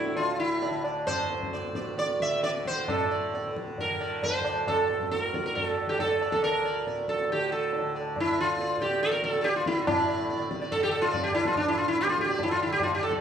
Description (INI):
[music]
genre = indian classical, Hindustani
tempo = 131-146 BPM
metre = 4/4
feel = straight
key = unclear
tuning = A4 = 439 Hz
[part]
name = sitar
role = melody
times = 0.0-13.2 s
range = D4 to E5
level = -26 LUFS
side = right 1 dB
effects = none
[part]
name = tanpura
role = drone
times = 0.0-13.2 s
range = D2 to D3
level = -36 LUFS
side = right 1 dB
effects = none
[part]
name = tabla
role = percussion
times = 0.1-13.2 s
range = none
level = -33 LUFS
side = equal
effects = none
[sound]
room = moderate recital hall reverb, RT60 1.5 s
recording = studio ambience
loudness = -25 LUFS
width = side -8 dB against mid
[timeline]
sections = 0.0-2.9 A section; 2.9-9.9 B section; 9.9-13.2 C section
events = speeding up 0.0-13.2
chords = none